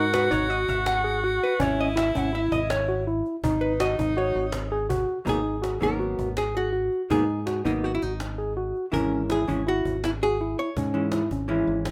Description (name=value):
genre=progressive instrumental, band music in an uneven meter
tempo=164 BPM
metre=5/4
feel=straight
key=G# minor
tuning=A4 = 441 Hz
part: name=edgy alto saxophone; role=second line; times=0.0-5.0 s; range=D#4 to F#4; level=-31 LUFS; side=equal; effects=none
part: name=vintage hollow-body jazz guitar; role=accompaniment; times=0.0-11.9 s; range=E3 to F#5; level=-31 LUFS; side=equal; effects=none
part: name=tine electric piano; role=arpeggios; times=0.0-11.8 s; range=C#4 to G#4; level=-29 LUFS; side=equal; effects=medium tremolo
part: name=fingered electric bass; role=bass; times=0.0-11.9 s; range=G#1 to G#2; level=-34 LUFS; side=equal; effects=none
part: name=cajon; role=drums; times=0.1-11.9 s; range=none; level=-37 LUFS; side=equal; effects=none
part: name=archtop guitar, miked and amplified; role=melody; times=5.3-11.3 s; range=D#4 to C#5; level=-31 LUFS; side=equal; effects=none
room=light reverb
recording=rough home demo mix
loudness=-25 LUFS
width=mono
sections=0.0-5.3 A section; 5.3-11.9 B section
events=hollow-body jazz guitar solo 0.0-5.3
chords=0.0 G#5; 1.6 C#m/G#; 3.4 G#5; 5.3 G#m7; 8.9 C#m/G#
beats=0.14 0.51 0.87 1.24 | 1.60 1.97 2.34 2.70 3.07 | 3.44 3.80 4.17 4.54 4.90 | 5.27 5.64 6.00 6.37 6.74 | 7.11 7.47 7.84 8.21 8.57 | 8.94 9.30 9.67 10.04 10.40 | 10.77 11.13 11.50 11.86